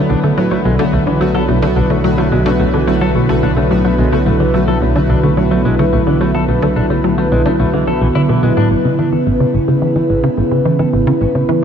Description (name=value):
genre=ambient, sequencer-driven space music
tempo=108 BPM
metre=4/4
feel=straight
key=unclear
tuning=A4 = 443 Hz
part: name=sweeping resonant pad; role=sustained chords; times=0.0-11.6 s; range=C#3 to B4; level=-15 LUFS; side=right 1 dB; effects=chorus, shimmer reverb
part: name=analog drone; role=bass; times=0.8-8.7 s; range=B1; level=-21 LUFS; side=equal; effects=chorus
part: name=pulsing gated texture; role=texture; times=0.0-11.6 s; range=B3 to A5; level=-25 LUFS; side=right 1 dB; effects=chorus, built-in reverb, shimmer reverb
part: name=semi-hollow electric guitar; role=arpeggios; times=0.1-11.6 s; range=A2 to A4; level=-23 LUFS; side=left 4 dB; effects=auto-pan, tape echo, shimmer reverb
part: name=tight sequencer bass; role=riff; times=0.1-11.6 s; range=A1 to F#3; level=-15 LUFS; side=equal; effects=analog chorus, tape echo
room=moderate plate reverb, RT60 3.1 s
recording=dark, warm production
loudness=-11 LUFS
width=side -8 dB against mid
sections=0.0-8.7 A section; 8.7-11.6 A section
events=none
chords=0.0 Bm; 8.7 Aadd9